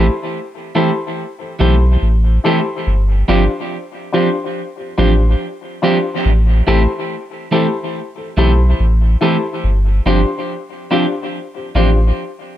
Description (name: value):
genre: reggae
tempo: 71 BPM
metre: 4/4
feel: straight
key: A minor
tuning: A4 = 441 Hz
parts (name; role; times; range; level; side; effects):
- clean electric guitar; accompaniment; 0.0-11.9 s; E3 to G4; -19 LUFS; right 4 dB; tape echo
- dark upright piano; stabs; 0.0-12.0 s; D4 to C5; -20 LUFS; left 4 dB; tape echo
- warm sub bass; bass; 0.0-12.1 s; G1 to B1; -12 LUFS; equal; none
room: light reverb, small room ambience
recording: echo-heavy mix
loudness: -13 LUFS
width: side -12 dB against mid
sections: 0.0-12.6 A section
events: none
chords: 0.0 Am7; 2.9 G7sus4; 6.3 Am7; 9.6 G7sus4